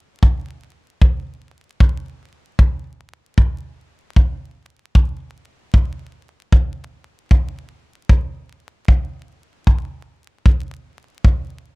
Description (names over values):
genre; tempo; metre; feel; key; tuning
blues; 76 BPM; 4/4; swing 65% on 8ths; none; none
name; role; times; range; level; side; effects
kick drum; drums; 0.2-11.5 s; none; -13 LUFS; equal; none
room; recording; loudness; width
little or no reverb; close, detailed microphones, vinyl crackle; -16 LUFS; side -26 dB against mid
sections
0.0-4.9 A section; 4.9-11.8 B section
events
none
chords
none